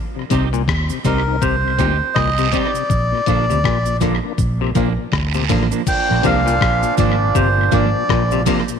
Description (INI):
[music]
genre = roots reggae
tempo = 81 BPM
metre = 4/4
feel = swing 60% on 16ths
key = unclear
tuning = A4 = 439 Hz
[part]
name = tonewheel organ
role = accompaniment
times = 0.2-8.8 s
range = Bb2 to Eb4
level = -27 LUFS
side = left 11 dB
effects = overdrive, chorus vibrato, slow rotary speaker
[part]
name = electric guitar at the edge of break-up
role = accompaniment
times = 0.3-8.7 s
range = F3 to G4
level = -24 LUFS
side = right 12 dB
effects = dub echo
[part]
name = clav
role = arpeggios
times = 0.3-8.6 s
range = Bb2 to D3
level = -25 LUFS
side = left 13 dB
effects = none
[part]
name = vintage muted fingered electric bass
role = bass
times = 0.3-8.4 s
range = G1 to Eb2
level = -19 LUFS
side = right 1 dB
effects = none
[part]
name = dusty soul sampler-style drum kit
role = drums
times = 0.3-8.7 s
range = crash cymbal, hi-hat, kick drum, rim click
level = -22 LUFS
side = left 2 dB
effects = tape echo
[part]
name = cabasa and guiro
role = percussion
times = 0.3-8.8 s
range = none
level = -30 LUFS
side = right 14 dB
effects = none
[part]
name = melodica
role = melody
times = 1.1-8.4 s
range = Bb4 to G5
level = -20 LUFS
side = left 1 dB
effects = dub echo
[part]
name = clear trombone section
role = second line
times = 5.9-8.4 s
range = Bb2 to D4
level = -23 LUFS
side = right 13 dB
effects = dub echo
[sound]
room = light reverb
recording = 1960s-style stereo with parts hard left and right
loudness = -15 LUFS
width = side -7 dB against mid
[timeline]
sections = 0.0-5.9 A section; 5.9-8.8 B section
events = none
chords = 0.0 Cm; 2.9 Bb